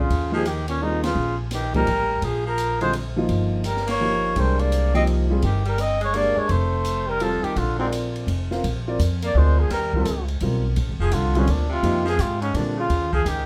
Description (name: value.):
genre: jazz, small-group swing and bop.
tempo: 169 BPM.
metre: 3/4.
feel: swing 65% on 8ths.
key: Bb mixolydian.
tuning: A4 = 440 Hz.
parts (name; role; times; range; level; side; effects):
warm flugelhorn; melody; 0.0-13.5 s; C4 to Eb5; -27 LUFS; equal; none.
growling baritone saxophone; second line; 0.0-13.5 s; Ab2 to C4; -32 LUFS; equal; none.
upright bass; bass; 0.0-13.5 s; F1 to Bb2; -26 LUFS; equal; none.
open jazz drum kit; drums; 0.1-13.4 s; hi-hat, kick drum, ride cymbal, snare drum; -35 LUFS; equal; none.
warm upright piano; accompaniment; 0.3-12.8 s; D3 to F5; -29 LUFS; equal; none.
room: moderate studio reverb, RT60 0.6 s.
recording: heard from further back in the room.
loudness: -22 LUFS.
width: mono.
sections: 0.0-8.6 A section; 8.6-13.5 A section.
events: band accent 1.0.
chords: 0.1 Eb9; 2.2 Bb5; 3.3 Eb9/G; 4.4 Cm7; 6.5 Fadd9; 7.6 Bbadd9; 8.3 F5; 8.6 Bbadd9; 9.7 Eb9; 10.8 Bb9 (rootless); 11.8 Fm7; 12.5 Bbadd9; 12.9 Eb9.